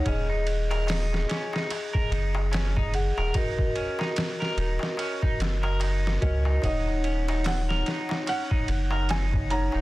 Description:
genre	trip hop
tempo	73 BPM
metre	4/4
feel	swing 58% on 16ths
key	unclear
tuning	A4 = 441 Hz
part	vibraphone with soft mallets	accompaniment	0.0-9.8 s	Eb4 to Gb5	-31 LUFS	left 1 dB	tremolo, tape echo
part	clean electric guitar	arpeggios	0.0-9.8 s	Db4 to Bb4	-34 LUFS	right 2 dB	lush chorus, tape echo
part	soft dub sub bass	bass	0.1-9.8 s	Eb1 to Db2	-26 LUFS	equal	none
part	trip hop sampler-style drum kit	drums	0.1-9.7 s	hi-hat, kick drum, ride cymbal, snare drum	-30 LUFS	equal	studio reverb
part	darbuka	percussion	0.1-9.8 s	none	-39 LUFS	left 2 dB	none
part	felt-muted upright piano	melody	6.6-9.8 s	Eb5 to Bb5	-33 LUFS	right 2 dB	tape echo
room	little or no reverb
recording	dense, heavily limited modern master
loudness	-24 LUFS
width	side -18 dB against mid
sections	0.0-9.8 A section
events	none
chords	0.1 Ebmadd11; 3.3 Gb6/Eb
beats	| 0.05 0.88 1.70 2.52 | 3.34 4.16 4.99 5.81 | 6.63 7.45 8.27 9.09

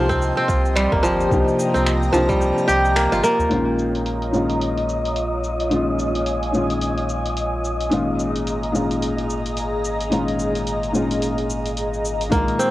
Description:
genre	organic downtempo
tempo	109 BPM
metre	4/4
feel	swing 59% on 16ths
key	Bb dorian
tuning	A4 = 440 Hz
part	felt-muted upright piano	accompaniment	0.0-12.7 s	Bb2 to G4	-23 LUFS	left 2 dB	sidechain pumping, cassette tape, analog delay
part	airy breathy pad	sustained chords	0.0-12.7 s	F4 to Db6	-27 LUFS	equal	chorus, phaser, sidechain pumping, cassette tape
part	kora	arpeggios	0.0-5.2, 12.3-12.7 s	F3 to G4	-19 LUFS	equal	cassette tape, analog delay
part	warm sub bass	bass	0.0-12.5 s	G1 to C2	-27 LUFS	equal	tube saturation
part	wind-like tuned noise texture	texture	0.0-12.3 s	Eb5 to G5	-30 LUFS	left 1 dB	built-in reverb, cassette tape
part	deep house drum kit	drums	0.1-12.7 s	cabasa, finger snaps, hi-hat	-31 LUFS	equal	overdrive, low-pass filter on perc, cassette tape, low-pass filter on snare, low-pass filter on hats, low-pass filter on room
part	electronic kick drum	drums	0.1-2.4, 12.3-12.5 s	none	-23 LUFS	equal	cassette tape
part	udu	percussion	0.1-3.5 s	none	-32 LUFS	equal	none
room	wet small room reverb, RT60 0.6 s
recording	home recording on cassette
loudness	-18 LUFS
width	side -16 dB against mid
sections	0.0-3.5 A section; 3.5-12.3 B section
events	kick drops out 3.0-3.5; band accent 3.0; filter sweep on analog synth pad 3.5-12.3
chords	0.0 Cm; 3.5 Bbm; 7.9 Absus2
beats	0.21 0.76 | 1.31 1.86 2.41 2.96 | 3.51 4.06 4.62 5.17 | 5.72 6.27 6.82 7.37 | 7.92 8.47 9.02 9.57 | 10.12 10.67 11.22 11.77 | 12.32

